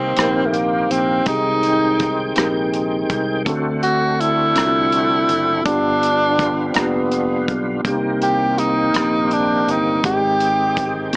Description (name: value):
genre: slow gospel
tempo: 55 BPM (dotted quarters)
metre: 6/8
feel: straight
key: C minor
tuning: A4 = 445 Hz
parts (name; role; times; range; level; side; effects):
- clear tenor saxophone; melody; 0.0-11.1 s; A3 to G4; -18 LUFS; equal; none
- mellow tine electric piano; accompaniment; 0.0-11.2 s; G2 to Bb4; -22 LUFS; equal; medium stereo tremolo
- overdriven tonewheel organ; sustained chords; 0.0-11.1 s; D3 to G5; -24 LUFS; equal; slow rotary speaker, chorus vibrato
- fingered electric bass; bass; 0.0-11.2 s; F1 to D2; -27 LUFS; equal; none
- modern studio drum kit; drums; 0.2-11.2 s; hi-hat, kick drum, rim click; -23 LUFS; equal; none
room: light reverb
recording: small speaker sound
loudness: -15 LUFS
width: side -29 dB against mid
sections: 0.0-11.2 A section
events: none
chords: 0.0 Cm7; 1.3 Abmaj7/C; 3.5 D7; 5.7 G7; 7.8 Cm7; 10.0 Abmaj7